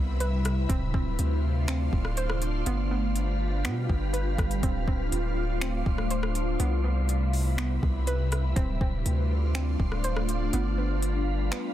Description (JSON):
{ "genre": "hip hop, atmospheric cloud-rap", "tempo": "122 BPM", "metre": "4/4", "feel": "half-time", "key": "D dorian", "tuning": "A4 = 440 Hz", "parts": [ { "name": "ethereal airy pad", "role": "sustained chords", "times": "0.0-11.7 s", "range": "C3 to F5", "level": "-32 LUFS", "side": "left 1 dB", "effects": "ensemble chorus, built-in reverb, phaser" }, { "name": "soft round pluck", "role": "arpeggios", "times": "0.0-11.7 s", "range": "B3 to C5", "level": "-37 LUFS", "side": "right 3 dB", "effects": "chorus, digital delay" }, { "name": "long sustained 808-style bass", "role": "bass", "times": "0.0-11.5 s", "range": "D1 to B2", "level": "-27 LUFS", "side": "equal", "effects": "none" }, { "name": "wind-like tuned noise texture", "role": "texture", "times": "0.0-11.7 s", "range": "C4 to C6", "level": "-40 LUFS", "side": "equal", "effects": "built-in reverb" }, { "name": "smooth R&B drum kit", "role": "drums", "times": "0.2-11.6 s", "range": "finger snaps, hi-hat, kick drum, rim click", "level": "-30 LUFS", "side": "equal", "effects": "overdrive, soft clipping on snare" } ], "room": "little or no reverb", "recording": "dense, heavily limited modern master", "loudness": "-25 LUFS", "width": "side -12 dB against mid", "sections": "0.0-11.7 A section", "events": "break 11.5", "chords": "0.0 Cmaj7; 0.7 Dm7; 2.7 G7; 4.6 Dm7; 6.6 Cmaj7; 8.6 Dm7; 10.5 G7" }